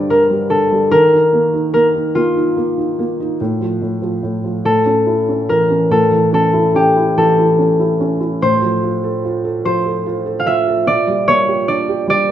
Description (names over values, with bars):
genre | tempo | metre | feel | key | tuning
children's music, lullaby | 48 BPM (dotted quarters) | 6/8 | rubato | unclear | A4 = 444 Hz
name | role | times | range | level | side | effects
concert harp | melody | 0.0-12.3 s | F4 to F5 | -14 LUFS | left 1 dB | none
felt-muted upright piano | accompaniment | 0.0-12.3 s | G2 to A4 | -18 LUFS | right 2 dB | none
room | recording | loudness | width
moderate recital hall reverb, RT60 1.4 s | minimal, uncompressed stereo recording | -13 LUFS | side -10 dB against mid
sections
0.0-5.9 A section; 5.9-12.3 B section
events
none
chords
0.0 G5; 0.9 Ebsus2; 3.4 F/A; 4.6 A; 8.4 F/A; 10.9 Gm/Bb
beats
| 0.92 2.15 | 3.39 4.64 | 5.90 7.17 | 8.41 9.65 | 10.87 12.09